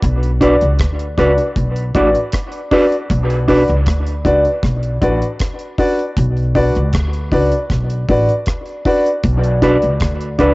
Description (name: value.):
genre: dub reggae.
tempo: 78 BPM.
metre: 4/4.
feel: straight.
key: B minor.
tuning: A4 = 440 Hz.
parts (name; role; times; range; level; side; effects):
upright bass; bass; 0.0-10.5 s; A1 to D2; -17 LUFS; equal; none.
deep reggae drum kit; drums; 0.0-10.5 s; hi-hat, kick drum, rim click; -20 LUFS; equal; cassette tape.
mellow electric guitar; accompaniment; 0.4-3.6, 9.6-10.5 s; D4 to B4; -19 LUFS; right 1 dB; warbly pitch drift, cassette tape, dub echo.
dark upright piano; stabs; 0.4-10.5 s; D4 to D5; -17 LUFS; left 1 dB; cassette tape, dub echo.
room: moderate spring reverb, RT60 2.2 s.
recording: home recording on cassette, nothing above 7.9 kHz.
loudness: -13 LUFS.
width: side -23 dB against mid.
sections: 0.0-10.5 A section.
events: none.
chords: 0.0 Bm.